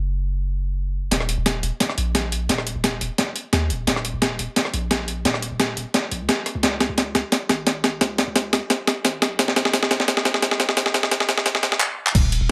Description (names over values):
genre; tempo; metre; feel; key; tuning
liquid drum and bass; 174 BPM; 4/4; straight; unclear; A4 = 441 Hz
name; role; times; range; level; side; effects
long sustained 808-style bass; bass; 0.0-12.5 s; Eb1 to Eb2; -29 LUFS; equal; none
breakbeat sampler-style drum kit; drums; 1.1-12.4 s; crash cymbal, handclaps, hi-hat, rim click, snare drum; -22 LUFS; equal; small room ambience
electronic kick drum; drums; 1.1-12.2 s; none; -28 LUFS; equal; none
room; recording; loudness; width
light reverb, digital ambience; high-pass filter; -22 LUFS; mono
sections
0.0-1.1 A section; 1.1-12.2 B section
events
build-up 1.1-12.2; drum fill 1.1-11.8, 11.8-12.2; filter sweep 1.1-12.2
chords
none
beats
0.08 0.42 0.77 | 1.11 1.46 1.80 2.15 | 2.49 2.84 3.18 3.53 | 3.87 4.22 4.56 4.91 | 5.25 5.60 5.94 6.29 | 6.63 6.98 7.32 7.67 | 8.01 8.36 8.70 9.05 | 9.39 9.74 10.08 10.43 | 10.77 11.12 11.46 11.80 | 12.15 12.49